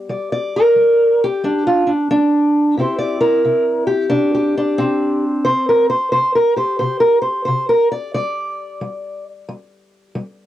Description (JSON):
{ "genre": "acoustic country blues, solo or duo", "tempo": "89 BPM", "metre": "4/4", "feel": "swing 63% on 8ths", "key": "unclear", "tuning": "A4 = 440 Hz", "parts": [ { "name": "fingerpicked steel-string acoustic guitar", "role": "solo", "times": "0.0-10.5 s", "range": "C3 to D5", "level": "-14 LUFS", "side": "equal", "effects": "cassette tape" } ], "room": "light reverb", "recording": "home recording on cassette", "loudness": "-14 LUFS", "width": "side -13 dB against mid", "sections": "0.0-10.5 A section", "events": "none", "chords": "0.0 G5; 2.8 C; 8.2 G5" }